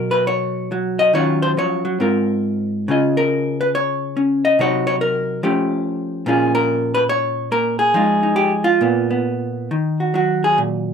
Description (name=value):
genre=solo jazz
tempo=140 BPM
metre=4/4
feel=swing 65% on 8ths, rubato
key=Eb minor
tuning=A4 = 440 Hz
part: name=vintage hollow-body jazz guitar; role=solo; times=0.0-10.9 s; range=Ab2 to D#5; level=-16 LUFS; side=equal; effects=none
room=light reverb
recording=close, detailed microphones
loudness=-16 LUFS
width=side -6 dB against mid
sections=0.0-9.7 A section; 9.7-10.9 B section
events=hollow-body jazz guitar solo 9.7-10.9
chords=0.0 Bmaj9; 1.1 Ebm9; 2.0 Ab69; 2.9 Db69; 4.6 Cm7b5; 5.4 F; 6.3 Bbm7; 7.9 Fm9; 8.8 Bb5; 9.7 Ebm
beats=0.28 0.71 | 1.14 1.56 2.00 2.44 | 2.88 3.31 3.75 4.17 | 4.59 5.01 5.43 5.85 | 6.26 6.68 7.10 7.52 | 7.94 8.37 8.81 9.26 | 9.70 10.14 10.58